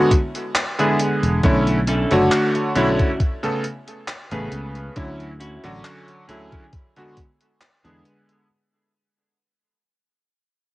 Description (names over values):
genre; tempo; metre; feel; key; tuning
vaporwave; 68 BPM; 4/4; swing 54% on 16ths; unclear; A4 = 439 Hz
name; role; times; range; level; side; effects
bright electric grand piano; accompaniment; 0.0-8.4 s; C#3 to C#5; -20 LUFS; equal; lush chorus, vintage 12-bit sampler grit, cassette tape, tape echo
electronic kick drum; drums; 0.1-7.4 s; none; -20 LUFS; equal; none
gated 80s digital drum machine; drums; 0.1-8.5 s; handclaps, hi-hat; -25 LUFS; equal; gated reverb
clean electric guitar; riff; 0.8-8.3 s; B3 to A4; -28 LUFS; equal; wide subtle chorus, low-pass filter, cassette tape, tape echo
fingered electric bass; bass; 1.2-8.0 s; E1 to E2; -24 LUFS; equal; none
room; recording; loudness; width
moderate booth ambience, RT60 0.2 s; home recording on cassette; -17 LUFS; side -18 dB against mid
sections
0.0-8.5 A section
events
fade-out 0.0-8.5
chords
0.0 E7; 1.4 Bm11; 3.2 Amaj9; 5.0 Dmaj9; 6.7 E7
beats
0.55 | 1.44 2.32 3.20 4.08 | 4.96 5.85 6.73 7.61